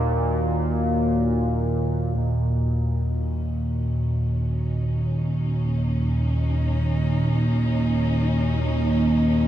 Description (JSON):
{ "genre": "dark ambient drone", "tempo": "free time", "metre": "none", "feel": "none", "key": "unclear", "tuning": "A4 = 440 Hz", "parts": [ { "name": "carillon bells", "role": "arpeggios", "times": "0.0-8.8 s", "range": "Eb3 to Eb4", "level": "-43 LUFS", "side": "equal", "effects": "none" }, { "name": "analog drone", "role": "drone", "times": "0.0-9.5 s", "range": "Eb2 to Bb2", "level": "-21 LUFS", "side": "equal", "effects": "chorus" }, { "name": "bronze singing bowl", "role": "texture", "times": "0.0-9.5 s", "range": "Gb4", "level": "-40 LUFS", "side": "left 2 dB", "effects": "shimmer reverb" }, { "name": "dark studio cello section", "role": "sustained chords", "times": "2.2-9.5 s", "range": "Gb3 to Eb4", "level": "-32 LUFS", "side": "left 1 dB", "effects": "shimmer reverb" } ], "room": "moderate huge ambient reverb, RT60 8.0 s", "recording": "small room ambience", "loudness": "-21 LUFS", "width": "side -12 dB against mid", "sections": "0.0-2.2 A section; 2.2-9.5 B section", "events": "fade-in on cello section 2.2-9.5; filter sweep on synth drone 2.2-9.5", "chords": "0.0 Ebm" }